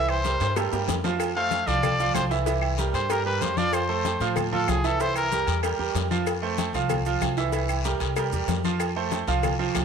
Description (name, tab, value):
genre	latin, salsa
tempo	189 BPM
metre	4/4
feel	straight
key	F major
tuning	A4 = 444 Hz
part	bright trumpet	melody	0.0-5.6 s	Ab4 to F5	-28 LUFS	left 2 dB	slapback echo
part	bright grand piano	accompaniment	0.0-9.8 s	E3 to F5	-27 LUFS	right 9 dB	none
part	upright bass	bass	0.0-9.8 s	C2 to A2	-29 LUFS	left 2 dB	none
part	agogo bells and timbales	percussion	0.1-9.8 s	none	-34 LUFS	right 10 dB	none
part	claves	percussion	0.1-9.8 s	none	-39 LUFS	left 15 dB	none
part	congas	percussion	0.1-9.8 s	none	-33 LUFS	left 12 dB	none
part	cowbell and bongos	percussion	0.2-9.8 s	none	-34 LUFS	left 14 dB	none
part	guiro	percussion	0.2-9.8 s	none	-37 LUFS	left 15 dB	none
part	maracas	percussion	0.2-9.8 s	none	-44 LUFS	right 11 dB	none
room	moderate echo chamber reverb, RT60 2.0 s, small room ambience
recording	1960s-style stereo with parts hard left and right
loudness	-22 LUFS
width	side -6 dB against mid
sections	0.0-6.3 A section; 6.3-9.8 B section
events	trumpet solo 0.0-6.3; drum fill 0.2-1.2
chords	0.0 C7; 1.2 F; 2.5 C7; 3.7 F; 5.0 C7; 6.3 F; 7.5 C7; 8.8 F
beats	0.25 0.56 0.88 | 1.20 1.51 1.83 2.15 | 2.47 2.78 3.10 3.42 | 3.73 4.05 4.37 4.69 | 5.00 5.32 5.64 5.95 | 6.27 6.59 6.90 7.22 | 7.54 7.85 8.17 8.48 | 8.80 9.12 9.43 9.75